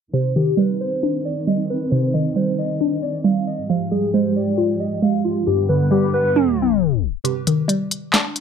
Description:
hip hop, trap; 135 BPM; 4/4; half-time; C harmonic minor; A4 = 440 Hz
warbly lo-fi synth keys; melody; 0.1-7.2 s; F4 to F5; -24 LUFS; left 2 dB; chorus, tape echo
glassy wavetable pluck; accompaniment; 0.1-8.4 s; G2 to F4; -20 LUFS; right 2 dB; chorus
warm studio string section; sustained chords; 0.1-7.2 s; G2 to G4; -25 LUFS; equal
trap drum kit; drums; 7.2-8.4 s; handclaps, hi-hat, snare drum; -18 LUFS; left 1 dB
little or no reverb; dry, gritty hardware recording, low-pass filter, tape stop; -17 LUFS; side -7 dB against mid
0.1-7.2 A section; 7.2-8.4 B section
filter sweep 0.1-7.2; tape stop 6.4-7.2; kick muted 7.2-8.4
0.1 Cmadd9; 3.7 Fmadd9; 5.5 G; 7.2 Cmadd9

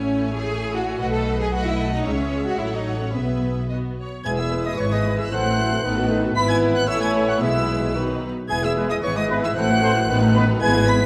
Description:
quick classical-period movement for symphony orchestra; 113 BPM; 2/4; rubato; E major; A4 = 444 Hz
rich studio violin section; melody; 0.0-11.1 s; B4 to B6; -33 LUFS; equal
clear studio violin section; second line; 0.0-11.1 s; D#4 to G#5; -33 LUFS; equal
rich studio viola section; accompaniment; 0.0-11.1 s; D#3 to B4; -31 LUFS; equal
clear studio cello section; bass; 0.0-11.1 s; E2 to A4; -28 LUFS; equal
rich studio double bass section; bass; 0.0-11.1 s; E1 to C#2; -28 LUFS; equal
warm clarinet; second line; 4.2-11.1 s; F#4 to C#5; -32 LUFS; equal
dark trumpet section; stabs; 4.2-11.1 s; B4 to C#5; -31 LUFS; equal
clear oboe; second line; 4.3-11.0 s; C#5 to B5; -32 LUFS; equal
concert flute; second line; 4.3-10.9 s; C#5 to B5; -30 LUFS; equal
mellow bassoon; accompaniment; 4.3-11.1 s; D#3 to E3; -31 LUFS; equal
warm French horn section; sustained chords; 4.3-11.1 s; F#3 to E4; -31 LUFS; equal
moderate scoring stage reverb, RT60 1.7 s; vinyl crackle; -21 LUFS; mono
0.0-4.3 A section; 4.3-11.1 B section
0.0 Amaj7; 1.0 B7; 2.1 C#m; 2.6 F#m7/A; 3.1 E/B; 3.7 B5; 4.3 E; 4.8 E/G#; 5.3 F#m7b5/A; 5.8 B7/A; 6.4 E/G#; 6.9 A; 7.4 E/B; 8.0 B; 8.5 E; 9.0 E/G#; 9.6 F#m7b5/A; 10.1 B7/A

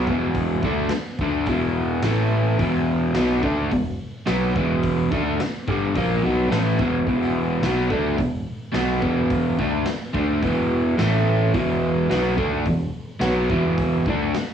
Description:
garage rock duo or trio; 107 BPM; 4/4; straight; A4 = 441 Hz
crunchy overdriven guitar; riff; 0.0-14.4 s; E2 to D4; -20 LUFS; equal; cassette tape
growling picked electric bass; bass; 0.0-14.4 s; E1 to D2; -26 LUFS; equal; overdrive
raw garage drum kit; drums; 0.1-14.5 s; hi-hat, kick drum, snare drum; -29 LUFS; equal
moderate booth ambience, RT60 0.2 s; home recording on cassette, studio reverb; -19 LUFS; side -8 dB against mid
0.0-14.5 A section
0.0 E5; 2.0 A5; 2.6 E5; 11.0 A5; 11.5 E5

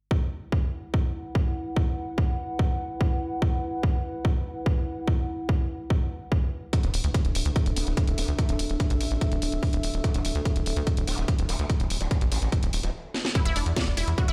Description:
psychedelic trance; 145 BPM; 4/4; straight; A4 = 440 Hz
electronic kick drum; drums; 0.1-14.3 s; -26 LUFS; equal
warbly tape-like pad; texture; 0.6-14.3 s; D4 to F#5; -37 LUFS; equal; chorus, built-in reverb, sidechain pumping
vowel-sweep wobble bass; second line; 6.7-13.5 s; E3 to B3; -44 LUFS; equal; subtle chorus, sidechain pumping, high-pass filter, dub echo
garage drum kit; drums; 6.7-14.3 s; hi-hat, snare drum; -36 LUFS; equal
tight sequencer bass; bass; 6.8-14.3 s; D1 to E2; -29 LUFS; equal
unison pluck; riff; 13.4-14.3 s; D4 to F#4; -33 LUFS; equal; sidechain pumping, dub echo
little or no reverb; played on a big sound system in a bare room, large studio reverb; -27 LUFS; mono
0.1-13.4 A section
stop 12.9-13.4; drum fill 13.1
0.1 E5; 6.7 D5; 13.4 E5

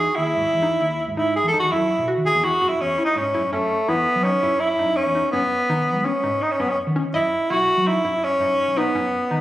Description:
progressive instrumental, band music in an uneven meter; 166 BPM; 5/4; straight; A4 = 440 Hz
breathy tenor saxophone; melody; 0.0-9.4 s; A3 to A4; -19 LUFS; equal; tape echo
analog pluck; arpeggios; 0.0-9.4 s; C#4 to D#5; -28 LUFS; equal; chorus
hollow-body short-scale fingered electric bass; bass; 0.0-9.4 s; B1 to G#3; -28 LUFS; equal
moderate studio reverb, RT60 0.5 s; recorded on a phone in the room, club reverb, compression; -18 LUFS; side -14 dB against mid
0.0-3.5 A section; 3.5-9.4 B section
tenor saxophone solo 0.0-3.5
0.0 Emaj7; 1.7 F#5; 3.5 A; 5.3 Bsus2/F#; 7.1 E5

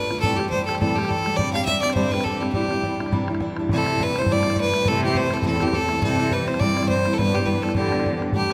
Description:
celtic folk, Celtic reel; 207 BPM; 4/4; swing 57% on 8ths; A4 = 439 Hz
bright fiddle; melody; 0.0-8.5 s; G4 to F5; -26 LUFS; equal
fingerpicked steel-string acoustic guitar; accompaniment; 0.0-8.5 s; G2 to G4; -27 LUFS; equal
bodhran; percussion; 0.1-8.5 s; -30 LUFS; equal
rich cello; bass; 3.7-8.2 s; E2 to D3; -28 LUFS; equal
wet cathedral reverb, RT60 5.3 s; recorded in a church or concert hall; -22 LUFS; mono
0.0-8.3 A section
0.2 C6; 1.4 Gsus4; 2.5 Cadd9; 3.7 C6; 4.9 Am/C; 6.0 C; 7.2 G6

